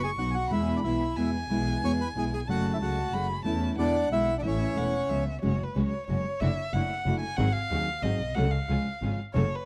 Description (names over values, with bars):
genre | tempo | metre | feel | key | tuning
tango | 183 BPM | 3/4 | rubato | F# harmonic minor from 5.4 s | A4 = 440 Hz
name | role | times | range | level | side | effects
bandoneon | melody | 0.0-5.2 s | C#4 to C#6 | -32 LUFS | equal | none
dark violin | second line | 0.0-9.7 s | B4 to C#6 | -36 LUFS | equal | tape echo
nylon-string guitar | accompaniment | 0.0-9.4 s | B2 to G#4 | -33 LUFS | equal | none
clear studio string section | stabs | 0.0-9.5 s | G#3 to A4 | -42 LUFS | equal | none
rich double bass | bass | 0.0-9.5 s | E1 to E2 | -32 LUFS | equal | none
room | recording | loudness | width
light reverb | dry, close 1970s-style studio recording | -28 LUFS | mono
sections
0.0-5.4 A section; 5.4-9.7 B section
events
violin solo 5.4-9.7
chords
0.0 B; 0.5 E; 2.5 F#madd9; 3.5 A/E; 3.8 E7; 4.4 A; 5.1 C#7; 5.4 F#sus2; 6.4 Dadd9/F#; 7.4 G#7; 8.4 F#m/C#; 8.7 C#